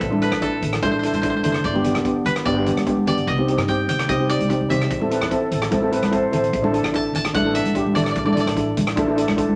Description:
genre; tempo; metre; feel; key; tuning
calypso; 147 BPM; 4/4; straight; unclear; A4 = 441 Hz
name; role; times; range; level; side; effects
koto; melody; 0.0-9.6 s; A4 to A5; -28 LUFS; equal; none
upright bass; bass; 0.0-9.6 s; F#1 to G2; -30 LUFS; equal; none
vintage drum kit; drums; 0.0-9.5 s; hi-hat, kick drum, rim click; -31 LUFS; equal; none
steel pan; accompaniment; 0.1-9.5 s; B3 to A4; -24 LUFS; equal; none
congas; percussion; 0.1-9.6 s; none; -28 LUFS; equal; none
bright reedy wooden flute; second line; 5.1-6.8 s; A4 to C5; -28 LUFS; equal; none
room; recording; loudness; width
moderate studio reverb, RT60 0.8 s; none; -20 LUFS; mono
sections
0.0-9.6 A section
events
koto solo 0.0-9.6; drum fill 2.8-3.3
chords
0.0 Dsus2/A; 1.6 G; 3.3 Cmadd9; 4.9 Am; 6.5 Dsus2/A

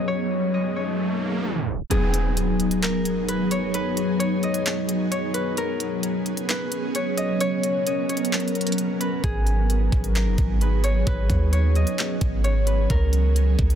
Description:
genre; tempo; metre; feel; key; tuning
hip hop, atmospheric cloud-rap; 131 BPM; 4/4; half-time; G# minor; A4 = 439 Hz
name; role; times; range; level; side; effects
Celtic harp; melody; 0.0-13.8 s; G#4 to D#5; -28 LUFS; left 2 dB; low-pass filter, ping-pong delay
ethereal airy pad; sustained chords; 0.0-13.8 s; F#3 to A#4; -25 LUFS; equal; ensemble chorus, built-in reverb, low-pass filter
riser and impact; sound effects; 0.0-3.7 s; none; -28 LUFS; equal; none
trap drum kit; drums; 1.9-13.8 s; handclaps, hi-hat, kick drum; -26 LUFS; right 1 dB; none
clean 808-style bass; bass; 9.2-13.8 s; F#1 to D#2; -20 LUFS; equal; none
room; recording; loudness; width
little or no reverb; dense, heavily limited modern master, tape stop; -20 LUFS; side -9 dB against mid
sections
0.0-1.9 A section; 1.9-13.8 B section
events
riser 0.0-1.9; filter sweep 0.0-1.9; tape stop 1.4-1.9; kick muted 1.9-9.2; impact 1.9-3.7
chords
0.0 C#7sus4; 9.2 G#m7; 12.9 C#7sus4

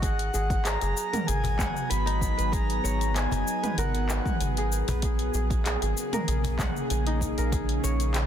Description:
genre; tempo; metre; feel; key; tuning
organic downtempo; 96 BPM; 4/4; straight; G# minor; A4 = 439 Hz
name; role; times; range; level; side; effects
breathy flute-like synth lead; melody; 0.0-4.7 s; F#5 to B5; -33 LUFS; left 1 dB; wide subtle chorus, ping-pong delay, shimmer reverb
bowed-like drone; sustained chords; 0.9-8.3 s; C#3 to G#4; -33 LUFS; equal; built-in reverb, sidechain pumping, shimmer reverb
kora; arpeggios; 0.0-8.3 s; D#4 to G#5; -34 LUFS; equal; ping-pong delay, shimmer reverb
round analog bass; bass; 0.0-8.3 s; F#1 to A#1; -28 LUFS; equal; sidechain pumping
deep house drum kit; drums; 0.0-8.3 s; handclaps, hi-hat, shaker, toms; -32 LUFS; equal; none
electronic kick drum; drums; 0.0-7.7 s; none; -30 LUFS; equal; none
cajon; percussion; 0.3-8.0 s; none; -37 LUFS; left 2 dB; none
room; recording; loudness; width
light reverb; dense, heavily limited modern master; -24 LUFS; side -9 dB against mid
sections
0.0-8.3 A section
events
none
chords
0.0 G#m7; 5.0 G#9sus4

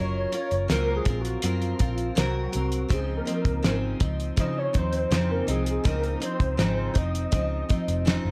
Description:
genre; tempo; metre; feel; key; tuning
indie pop, bedroom pop; 81 BPM; 4/4; straight; Db major; A4 = 440 Hz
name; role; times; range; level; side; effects
soft octave-layered synth lead; melody; 0.0-8.1 s; F4 to Eb5; -33 LUFS; equal; ensemble chorus, slapback echo
picked steel-string acoustic guitar; accompaniment; 0.0-8.3 s; Db3 to Bb4; -32 LUFS; equal; analog chorus, warbly pitch drift
vintage muted picked electric bass; bass; 0.0-8.3 s; F1 to Db3; -31 LUFS; equal; none
cloth-damped thuddy drum kit; drums; 0.3-8.2 s; hi-hat, kick drum, snare drum; -28 LUFS; equal; none
room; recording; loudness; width
light reverb, studio ambience; none; -26 LUFS; mono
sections
0.0-8.3 A section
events
soft synth lead solo 0.0-8.3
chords
0.0 Gbmaj7#11; 2.9 Dbmaj9

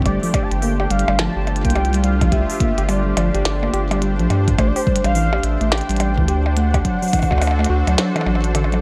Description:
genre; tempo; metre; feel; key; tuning
IDM; 106 BPM; 4/4; swing 62% on 16ths; unclear; A4 = 438 Hz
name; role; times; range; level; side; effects
warm analog pad; sustained chords; 0.0-8.8 s; A3 to C5; -28 LUFS; equal; chorus
electronic kick drum; drums; 0.0-7.4 s; none; -23 LUFS; equal; none
warm velvety synth lead; melody; 0.1-8.5 s; C5 to A5; -28 LUFS; equal; chorus, digital delay
tine electric piano; arpeggios; 0.1-8.8 s; D3 to G4; -25 LUFS; equal; digital delay
round analog bass; bass; 0.1-8.8 s; G1 to G2; -22 LUFS; equal; none
glitchy drum kit; drums; 0.1-8.8 s; hi-hat, percussion blips, snare drum; -27 LUFS; equal; none
room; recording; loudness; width
light reverb, digital ambience; bright 1980s-style digital production; -18 LUFS; mono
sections
0.0-8.8 A section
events
none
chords
0.1 G7(no3); 4.6 Am7; 6.8 D7

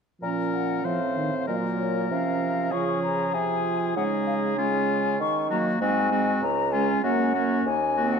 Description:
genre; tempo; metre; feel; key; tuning
quick classical-period movement for wind quintet; 97 BPM; 2/4; rubato; Bb minor; A4 = 437 Hz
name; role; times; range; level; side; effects
mellow hollow silver concert flute; melody; 0.2-8.2 s; Db5 to Db6; -28 LUFS; left 6 dB; none
clear oboe; second line; 0.2-8.2 s; F4 to C5; -31 LUFS; left 4 dB; none
bright clarinet; accompaniment; 0.2-8.2 s; Bb3 to F4; -30 LUFS; right 8 dB; none
mellow French horn; accompaniment; 0.2-8.2 s; Eb3 to Bb3; -30 LUFS; equal; none
warm bassoon; bass; 0.2-8.2 s; Db2 to Eb3; -29 LUFS; right 2 dB; none
room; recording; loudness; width
wet scoring stage reverb, RT60 1.8 s; dark, warm production; -22 LUFS; side -6 dB against mid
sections
0.2-8.2 A section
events
none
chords
0.2 Bbm; 0.9 F7/A; 1.5 Bbm; 2.7 Db; 3.3 Ab/C; 4.0 Db; 5.2 Ebm7; 5.8 Ab7; 6.4 Db; 7.0 Gb; 7.7 Cm7b5/Eb

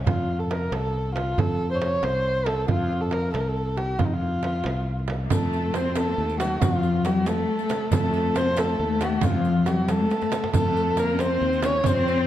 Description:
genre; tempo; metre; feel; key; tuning
Persian modal ensemble; 92 BPM (dotted quarters); 6/8; straight; F dastgah homayun; A4 = 440 Hz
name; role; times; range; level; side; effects
fretless electric bass; bass; 0.0-12.3 s; C2 to F2; -27 LUFS; equal; none
dark kamancheh; melody; 0.1-12.3 s; Eb4 to Db5; -26 LUFS; equal; none
frame drum; percussion; 0.1-11.9 s; none; -31 LUFS; right 5 dB; none
tombak; percussion; 0.1-12.1 s; none; -29 LUFS; right 2 dB; none
dark studio cello section; second line; 5.2-12.3 s; F3 to Db4; -26 LUFS; left 3 dB; none
riq; percussion; 5.3-12.1 s; none; -37 LUFS; left 5 dB; none
room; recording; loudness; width
moderate recital hall reverb, RT60 1.5 s; dark, warm production; -21 LUFS; side -12 dB against mid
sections
0.0-5.3 A section; 5.3-12.3 B section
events
drum fill 10.1-10.5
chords
none

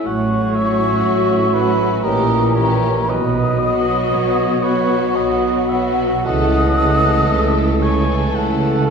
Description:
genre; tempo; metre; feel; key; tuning
classical, slow romantic movement for symphony orchestra; 53-61 BPM; 3/4; rubato; unclear; A4 = 438 Hz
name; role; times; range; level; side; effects
warm symphonic violin section; melody; 0.0-8.9 s; F#4 to A4; -25 LUFS; left 3 dB; none
rich symphonic violin section; second line; 0.0-8.9 s; A3 to C#4; -29 LUFS; left 2 dB; none
warm cor anglais; second line; 0.0-8.9 s; B4 to G#5; -26 LUFS; right 4 dB; none
rich chamber viola section; accompaniment; 0.0-8.9 s; E3 to F#3; -26 LUFS; right 1 dB; none
mellow French horn section; sustained chords; 0.0-8.9 s; E3 to G4; -22 LUFS; left 2 dB; none
clear clarinet; second line; 0.1-8.9 s; F#4 to D#5; -24 LUFS; right 1 dB; none
mellow hollow concert flute; second line; 0.1-8.9 s; F#5 to D#6; -22 LUFS; left 1 dB; none
rich studio cello section; bass; 0.1-8.9 s; A2 to C#3; -21 LUFS; right 2 dB; none
rich symphonic double bass section; bass; 0.1-8.9 s; A1 to C#2; -22 LUFS; right 3 dB; none
room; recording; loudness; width
wet concert hall reverb, RT60 2.1 s; heard from further back in the room; -14 LUFS; side -6 dB against mid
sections
0.0-8.9 A section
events
none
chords
0.1 F#m/A; 2.0 A#dim7; 3.1 B; 6.3 A/C#

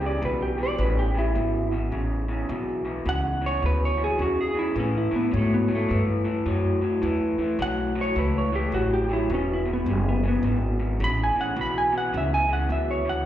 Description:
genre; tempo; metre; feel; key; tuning
electric blues shuffle; 106 BPM; 4/4; swing 64% on 8ths; E mixolydian; A4 = 441 Hz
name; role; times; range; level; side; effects
clean lap steel guitar; melody; 0.0-13.3 s; G3 to B5; -26 LUFS; right 1 dB; slapback echo
electric guitar through a small old amp; riff; 0.0-13.2 s; E2 to F#3; -27 LUFS; left 1 dB; slapback echo
upright bass; bass; 0.0-13.2 s; E1 to A2; -27 LUFS; equal; none
room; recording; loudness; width
moderate club reverb, RT60 0.9 s; live gig heard through the venue's PA, recital hall reverb; -22 LUFS; side -12 dB against mid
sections
0.0-13.3 A section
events
electric slide guitar solo 0.0-13.3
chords
0.0 E5; 4.8 A7; 9.3 E7

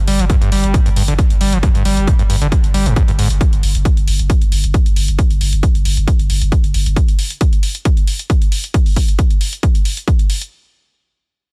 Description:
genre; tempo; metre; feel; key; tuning
driving peak-time techno; 135 BPM; 4/4; straight; unclear; A4 = 439 Hz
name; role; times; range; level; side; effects
warm sub bass; bass; 0.0-7.0 s; G1; -20 LUFS; equal; overdrive, sidechain pumping, low-pass filter
screaming distorted acid line; riff; 0.1-3.3 s; G2 to G3; -21 LUFS; equal; distortion, chorus, sidechain pumping, tape echo
electronic hi-hat; drums; 0.1-10.5 s; none; -27 LUFS; equal; overdrive, sidechain pumping on hats, sidechain pumping on perc, sidechain pumping on cymbals
electronic kick drum; drums; 0.3-10.2 s; none; -16 LUFS; equal; overdrive
room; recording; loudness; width
little or no reverb; dense, heavily limited modern master; -15 LUFS; mono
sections
0.0-10.5 A section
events
none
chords
0.0 G5

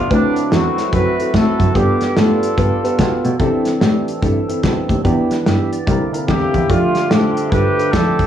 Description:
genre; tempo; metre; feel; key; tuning
uptempo gospel; 146 BPM; 4/4; swing 63% on 8ths; C major; A4 = 439 Hz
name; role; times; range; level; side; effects
mellow horn section; melody; 0.0-3.3, 6.3-8.3 s; F#3 to B4; -19 LUFS; equal; tape echo
tonewheel organ; sustained chords; 0.0-8.3 s; D3 to E5; -24 LUFS; right 6 dB; fast rotary speaker, overdrive
dark concert grand piano; accompaniment; 0.1-8.2 s; G2 to B4; -20 LUFS; left 1 dB; none
dark cello; bass; 0.1-8.0 s; C2 to C3; -19 LUFS; equal; none
natural country drum kit; drums; 0.1-8.3 s; hi-hat, kick drum, snare drum; -19 LUFS; equal; none
room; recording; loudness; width
moderate large studio reverb, RT60 0.9 s; worn, warbling old tape, cassette tape, warbly pitch drift, studio ambience; -13 LUFS; side -10 dB against mid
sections
0.0-8.3 A section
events
none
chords
0.1 D13; 1.8 G9; 3.4 C69; 5.0 Em7; 5.9 C9; 6.7 F69

